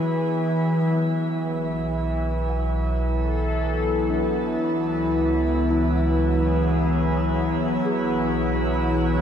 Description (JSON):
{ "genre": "ambient", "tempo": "56 BPM", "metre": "3/4", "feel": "straight", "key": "unclear", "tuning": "A4 = 435 Hz", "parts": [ { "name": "evolving wavetable pad", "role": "sustained chords", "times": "0.0-9.2 s", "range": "E3 to A4", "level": "-22 LUFS", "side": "equal", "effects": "chorus, built-in reverb" }, { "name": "organ-like drone", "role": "drone", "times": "0.0-9.2 s", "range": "B3 to B4", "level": "-40 LUFS", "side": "right 2 dB", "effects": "ensemble chorus, built-in reverb, phaser" }, { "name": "warm sub bass", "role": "bass", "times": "1.4-9.2 s", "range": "B1 to C#2", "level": "-26 LUFS", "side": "equal", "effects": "none" }, { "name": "worn celesta", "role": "arpeggios", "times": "2.5-9.2 s", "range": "D4 to F#5", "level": "-34 LUFS", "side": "equal", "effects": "none" } ], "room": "wet shimmer reverb, RT60 7.8 s", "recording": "none", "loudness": "-20 LUFS", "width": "side -8 dB against mid", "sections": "0.0-1.4 A section; 1.4-9.2 B section", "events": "fade-in on synth drone 1.4-9.2", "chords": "0.0 F#sus2; 1.4 Bm7; 4.6 C#m7; 7.8 B5", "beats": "0.35 | 1.42 2.49 3.56 | 4.63 5.71 6.78 | 7.85 8.92" }